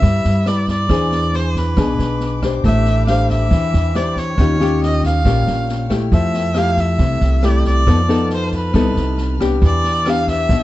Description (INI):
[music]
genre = bossa nova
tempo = 138 BPM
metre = 4/4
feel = straight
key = unclear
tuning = A4 = 440 Hz
[part]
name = rich erhu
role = melody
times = 0.0-10.6 s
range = B4 to F5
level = -21 LUFS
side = equal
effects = plate reverb
[part]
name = nylon-string guitar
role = accompaniment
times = 0.0-10.6 s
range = Bb2 to C5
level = -19 LUFS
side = left 2 dB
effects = none
[part]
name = warm studio violin section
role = sustained chords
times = 0.0-10.6 s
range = A4 to F6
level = -35 LUFS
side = left 3 dB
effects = none
[part]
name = upright bass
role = bass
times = 0.0-10.6 s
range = A1 to G2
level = -18 LUFS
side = right 1 dB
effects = none
[part]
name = open jazz drum kit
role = drums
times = 0.0-10.6 s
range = kick drum, rim click, snare drum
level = -22 LUFS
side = equal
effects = none
[sound]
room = light reverb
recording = dark, warm production, nothing above 8.0 kHz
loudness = -14 LUFS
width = side -16 dB against mid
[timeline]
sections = 0.0-10.6 A section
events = none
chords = 0.0 Cmaj7 (rootless); 0.9 E7b13; 2.6 Am11; 4.4 Eb9; 6.1 Fmaj9; 7.9 F7#11; 9.6 Em7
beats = 0.03 0.47 | 0.90 1.34 1.77 2.21 | 2.65 3.08 3.52 3.95 | 4.39 4.83 5.26 5.70 | 6.13 6.57 7.01 7.44 | 7.88 8.31 8.75 9.19 | 9.62 10.06 10.49